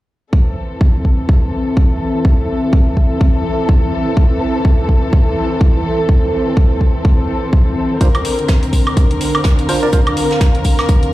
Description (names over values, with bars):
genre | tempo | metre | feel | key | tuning
bass house | 125 BPM | 4/4 | swing 58% on 16ths | A phrygian | A4 = 442 Hz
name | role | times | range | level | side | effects
dark studio string section | sustained chords | 0.3-11.1 s | D3 to Bb4 | -20 LUFS | left 1 dB | sidechain pumping
electronic kick drum | drums | 0.3-11.0 s | none | -12 LUFS | equal | studio reverb
warbly tape-like pad | texture | 0.7-11.1 s | C4 to C6 | -22 LUFS | right 1 dB | chorus, built-in reverb, sidechain pumping
percussive organ stab | stabs | 8.0-10.0 s | D4 to D5 | -21 LUFS | right 3 dB | chorus, sidechain pumping, tape echo
electronic hi-hat and woodblock | drums | 8.0-11.1 s | none | -22 LUFS | right 1 dB | studio reverb
soft brush drum kit | drums | 8.0-11.1 s | hi-hat, snare drum | -28 LUFS | right 2 dB | sidechain pumping on hats, high-pass filter on hats, studio reverb, high-pass filter on snare, high-pass filter on room
room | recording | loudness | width
light reverb | played on a big sound system in a bare room, large studio reverb | -12 LUFS | side -16 dB against mid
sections
0.3-11.1 A section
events
none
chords
0.3 Am; 8.0 Bbadd9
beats
| 0.33 0.81 1.29 1.77 | 2.25 2.73 3.21 3.69 | 4.17 4.65 5.13 5.61 | 6.09 6.57 7.05 7.53 | 8.01 8.49 8.97 9.45 | 9.93 10.41 10.89